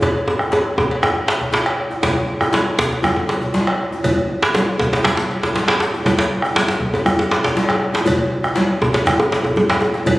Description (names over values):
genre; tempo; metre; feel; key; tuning
west african traditional, West African drum ensemble; 119 BPM; 4/4; straight; none; none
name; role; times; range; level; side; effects
bombo; percussion; 0.0-10.2 s; none; -22 LUFS; equal; none
cowbell; percussion; 0.0-10.2 s; none; -26 LUFS; equal; none
djembe; percussion; 0.0-10.2 s; none; -23 LUFS; left 1 dB; none
djembe; percussion; 0.0-9.9 s; none; -18 LUFS; equal; none
congas; percussion; 2.0-10.2 s; none; -24 LUFS; right 1 dB; none
room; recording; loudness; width
wet concert hall reverb, RT60 1.8 s; recorded on a phone in the room, studio reverb; -15 LUFS; side -18 dB against mid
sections
0.0-2.0 A section; 2.0-10.2 B section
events
drum fill 0.0-2.0, 9.4-10.1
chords
none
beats
| 0.01 0.52 1.02 1.53 | 2.03 2.54 3.04 3.54 | 4.05 4.55 5.05 5.56 | 6.06 6.56 7.06 7.57 | 8.07 8.57 9.07 9.57 | 10.07